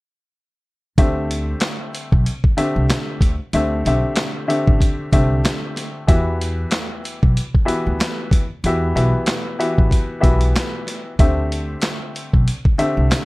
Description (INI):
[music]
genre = hip hop, boom-bap hip-hop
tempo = 94 BPM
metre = 4/4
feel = swing 58% on 16ths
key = unclear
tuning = A4 = 440 Hz
[part]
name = warm upright piano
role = accompaniment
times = 1.0-13.2 s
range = D3 to E5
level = -22 LUFS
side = left 1 dB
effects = cassette tape, high-pass filter, low-pass filter
[part]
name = upright bass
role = bass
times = 1.0-13.1 s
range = A1 to E2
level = -20 LUFS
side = equal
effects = none
[part]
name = boom bap sampler-style drum kit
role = drums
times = 1.0-13.2 s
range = handclaps, hi-hat, kick drum, snare drum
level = -18 LUFS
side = equal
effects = none
[sound]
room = little or no reverb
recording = none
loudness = -16 LUFS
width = side -22 dB against mid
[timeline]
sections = 1.0-13.2 A section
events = none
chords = 1.0 D7sus4; 6.1 Emadd9; 11.2 D7sus4